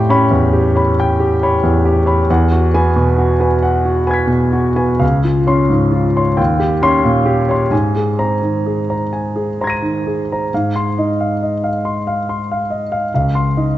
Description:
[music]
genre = classical, impressionist solo piano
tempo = 42-48 BPM (dotted quarters)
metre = 6/8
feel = rubato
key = unclear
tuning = A4 = 441 Hz
[part]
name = warm grand piano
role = solo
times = 0.0-13.8 s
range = Db2 to Eb7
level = -13 LUFS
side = equal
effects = none
[sound]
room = moderate concert hall reverb, RT60 1.9 s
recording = dark, warm production, nothing above 7.9 kHz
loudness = -13 LUFS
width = side -14 dB against mid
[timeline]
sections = 0.0-10.5 A section; 10.5-13.8 B section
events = none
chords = 0.0 A9; 2.3 Eadd9; 5.0 Dbmaj7; 6.4 Eb6; 7.7 Abadd9; 10.5 Ab6; 13.1 Dbmaj9

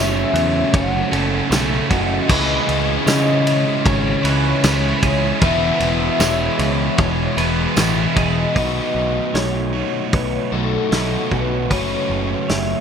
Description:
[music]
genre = rock, shoegaze and dream pop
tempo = 76 BPM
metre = 4/4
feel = straight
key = unclear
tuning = A4 = 441 Hz
[part]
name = warm velvety synth lead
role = melody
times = 0.0-12.8 s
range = A4 to F#5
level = -24 LUFS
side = left 3 dB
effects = chorus, slapback echo
[part]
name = electric guitar through a small old amp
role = arpeggios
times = 0.0-12.8 s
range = F#4 to C#5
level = -28 LUFS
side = right 3 dB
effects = ensemble chorus, slapback echo
[part]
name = crunchy overdriven guitar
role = riff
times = 0.0-12.8 s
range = E2 to F#4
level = -24 LUFS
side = left 11 dB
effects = analog chorus
[part]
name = crunchy overdriven guitar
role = riff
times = 0.0-12.8 s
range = E2 to F#4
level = -23 LUFS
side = right 11 dB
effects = reverse reverb
[part]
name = tight distorted guitar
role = riff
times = 0.0-8.6 s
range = F#2 to E4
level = -24 LUFS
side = equal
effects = distortion
[part]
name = growling picked electric bass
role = bass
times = 0.0-12.7 s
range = E1 to C#3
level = -23 LUFS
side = equal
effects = overdrive
[part]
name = loose indie drum kit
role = drums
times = 0.4-12.7 s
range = crash cymbal, hi-hat, kick drum, ride cymbal, snare drum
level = -22 LUFS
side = equal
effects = none
[part]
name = tambourine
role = percussion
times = 1.5-8.0 s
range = none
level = -31 LUFS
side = right 10 dB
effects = none
[sound]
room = moderate booth ambience, RT60 0.2 s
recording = none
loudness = -16 LUFS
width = side -7 dB against mid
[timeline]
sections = 0.0-8.6 A section; 8.6-12.8 B section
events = none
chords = 0.0 F#m7; 2.3 C#m9; 5.4 E; 8.6 B9; 11.7 F#m7

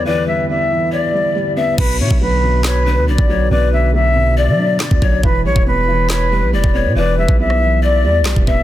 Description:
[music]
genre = hip hop, drill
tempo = 139 BPM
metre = 4/4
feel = half-time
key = B minor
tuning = A4 = 441 Hz
[part]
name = silver concert flute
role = melody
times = 0.0-8.6 s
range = B4 to E5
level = -18 LUFS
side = left 1 dB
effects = low-pass filter, digital delay
[part]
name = breathy large pan pipes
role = second line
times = 0.0-8.6 s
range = B4 to E5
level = -23 LUFS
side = left 4 dB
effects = digital delay
[part]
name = felt-muted upright piano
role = accompaniment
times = 0.0-8.6 s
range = B2 to B3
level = -21 LUFS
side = right 1 dB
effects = low-pass filter
[part]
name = sweeping resonant pad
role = sustained chords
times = 0.0-1.7 s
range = E2 to G4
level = -26 LUFS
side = left 4 dB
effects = chorus, low-pass filter
[part]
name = long sustained 808-style bass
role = bass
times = 1.8-8.6 s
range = E1 to F#3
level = -16 LUFS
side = equal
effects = none
[part]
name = drill drum kit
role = drums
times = 1.8-8.6 s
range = crash cymbal, handclaps, kick drum, rim click, snare drum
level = -16 LUFS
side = equal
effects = none
[sound]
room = studio ambience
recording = dense, heavily limited modern master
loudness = -12 LUFS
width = side -13 dB against mid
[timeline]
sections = 0.0-1.8 A section; 1.8-8.6 B section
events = hi-hats muted 1.8-8.6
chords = 0.0 Em7; 1.8 Bm; 5.2 Em7

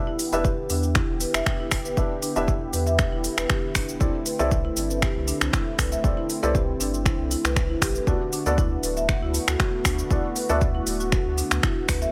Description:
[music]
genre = afro house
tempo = 118 BPM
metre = 4/4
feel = swing 53% on 16ths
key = E minor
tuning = A4 = 440 Hz
[part]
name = warm analog pad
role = sustained chords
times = 0.0-12.1 s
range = D3 to G4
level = -35 LUFS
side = equal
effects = chorus, sidechain pumping
[part]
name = felt-muted upright piano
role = stabs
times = 0.0-10.6 s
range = B3 to E5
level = -31 LUFS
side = equal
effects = sidechain pumping, low-pass filter, digital delay
[part]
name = warm sub bass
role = bass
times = 0.0-12.1 s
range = D1 to E2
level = -30 LUFS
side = equal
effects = sidechain pumping
[part]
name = marimba with medium mallets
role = arpeggios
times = 0.1-12.1 s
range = D4 to E5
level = -31 LUFS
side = equal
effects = sidechain pumping, digital delay
[part]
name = afro-pop drum kit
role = drums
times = 0.2-12.1 s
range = finger snaps, hi-hat, shaker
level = -29 LUFS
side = equal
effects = small room ambience
[part]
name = electronic kick drum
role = drums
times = 0.4-12.0 s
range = none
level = -28 LUFS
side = equal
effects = small room ambience
[sound]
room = little or no reverb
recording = none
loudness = -24 LUFS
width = mono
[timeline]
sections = 0.0-12.1 A section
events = none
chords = 0.0 Em7; 4.0 C69; 8.1 D6

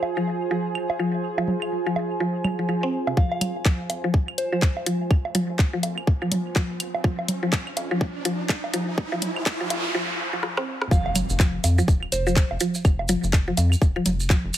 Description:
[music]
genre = minimal techno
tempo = 124 BPM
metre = 4/4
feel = swing 60% on 16ths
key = F minor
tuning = A4 = 444 Hz
[part]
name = woodblock, claves and congas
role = percussion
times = 0.0-14.6 s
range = none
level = -29 LUFS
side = right 2 dB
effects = small room ambience, ping-pong delay
[part]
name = pulsing gated texture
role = texture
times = 0.0-3.2 s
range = Ab4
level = -36 LUFS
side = left 2 dB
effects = chorus, built-in reverb, sidechain pumping
[part]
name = warbly tape-like pad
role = texture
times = 0.0-9.9 s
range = F4 to Ab5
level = -32 LUFS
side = right 4 dB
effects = chorus, built-in reverb, sidechain pumping
[part]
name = mallet-like synth pluck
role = riff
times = 0.2-14.4 s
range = C3 to C4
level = -27 LUFS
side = left 1 dB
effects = chorus, sidechain pumping, digital delay
[part]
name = soft synth bell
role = melody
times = 3.2-4.6, 10.9-12.3 s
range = C5 to F5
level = -31 LUFS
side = right 1 dB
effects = chorus, ping-pong delay
[part]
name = rubbery square bass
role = bass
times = 3.2-14.5 s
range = Eb1 to F2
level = -25 LUFS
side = equal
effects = sidechain pumping, high-pass filter
[part]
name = electronic kick drum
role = drums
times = 3.2-14.4 s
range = none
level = -19 LUFS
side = equal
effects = small room ambience
[part]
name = riser, noise sweep and impact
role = sound effects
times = 5.1-12.8 s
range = none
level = -32 LUFS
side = right 1 dB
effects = none
[part]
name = garage drum kit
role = drums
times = 3.4-14.6 s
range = handclaps, hi-hat, rim click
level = -27 LUFS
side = left 1 dB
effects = high-pass filter on hats, small room ambience, high-pass filter on snare
[part]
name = maracas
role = percussion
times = 10.9-14.6 s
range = none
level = -32 LUFS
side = right 5 dB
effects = none
[sound]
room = light reverb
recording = heavily compressed radio sound, high-pass filter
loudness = -21 LUFS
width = side -12 dB against mid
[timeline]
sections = 0.0-3.2 A section; 3.2-10.9 B section; 10.9-14.6 C section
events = filter sweep on synth arpeggio sound 0.0-3.2, 3.2-10.9; build-up 3.2-10.9; filter sweep 3.2-10.9; riser 5.1-9.9; noise sweep 9.0-10.9; drum fill 10.4-10.9; drop 10.9-14.6; impact 10.9-12.8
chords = 0.0 Fm; 10.9 N.C.

